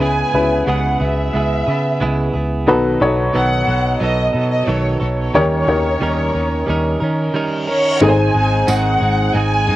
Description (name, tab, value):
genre	piano-driven pop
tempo	90 BPM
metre	4/4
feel	straight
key	unclear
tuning	A4 = 443 Hz
part	warm studio violin section	melody	0.0-9.8 s	C#5 to G#5	-20 LUFS	right 1 dB	cassette tape
part	warm upright piano	accompaniment	0.0-9.8 s	G#2 to C#5	-19 LUFS	left 2 dB	none
part	direct-recorded clean electric guitar	riff	0.0-9.8 s	G#2 to A#4	-21 LUFS	right 3 dB	none
part	vintage muted picked electric bass	bass	0.0-9.8 s	G#1 to D#3	-20 LUFS	equal	none
part	reverse cymbal	sound effects	7.2-8.0 s	none	-26 LUFS	left 2 dB	none
part	tambourine	percussion	8.7-8.8 s	none	-29 LUFS	right 6 dB	none
room	moderate booth ambience, RT60 0.2 s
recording	home recording on cassette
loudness	-14 LUFS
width	side -15 dB against mid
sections	0.0-8.0 A section; 8.0-9.8 B section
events	reverse cymbal 7.2-8.0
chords	0.0 C#m7; 2.7 B7; 5.3 D#7; 8.0 G#